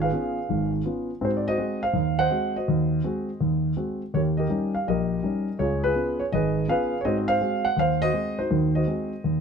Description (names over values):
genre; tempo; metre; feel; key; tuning
solo jazz; 165 BPM; 4/4; swing 63% on 8ths; Ab mixolydian; A4 = 440 Hz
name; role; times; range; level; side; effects
dark concert grand piano; solo; 0.0-9.4 s; Ab1 to Gb5; -22 LUFS; equal; none
room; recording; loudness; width
light reverb; dark, warm production; -22 LUFS; side -6 dB against mid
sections
0.0-9.4 A section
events
none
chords
0.0 Db7; 1.2 Ab7; 4.1 Eb7; 5.6 Db7; 7.0 Ab7